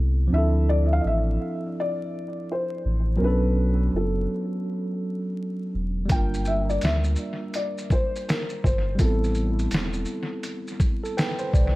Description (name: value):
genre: lo-fi hip hop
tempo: 83 BPM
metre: 4/4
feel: swing 62% on 16ths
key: unclear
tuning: A4 = 440 Hz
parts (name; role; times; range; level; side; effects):
- tine electric piano; accompaniment; 0.0-11.8 s; F3 to G5; -28 LUFS; right 1 dB; overdrive, fast stereo tremolo, analog delay
- warm sub bass; bass; 0.0-11.8 s; E1 to D2; -23 LUFS; equal; none
- felt-muted upright piano; melody; 0.3-10.4 s; A4 to G5; -30 LUFS; left 1 dB; analog delay
- lo-fi sampler-style drum kit; drums; 6.1-11.7 s; hi-hat, kick drum, shaker, snare drum; -25 LUFS; equal; vintage 12-bit sampler grit, analog delay
room: little or no reverb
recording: echo-heavy mix, vinyl crackle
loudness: -22 LUFS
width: side -19 dB against mid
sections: 0.0-11.8 A section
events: tine electric piano fill 10.8-11.8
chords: 0.3 Dm7; 3.2 Bm7; 6.1 Gm7; 9.0 Am7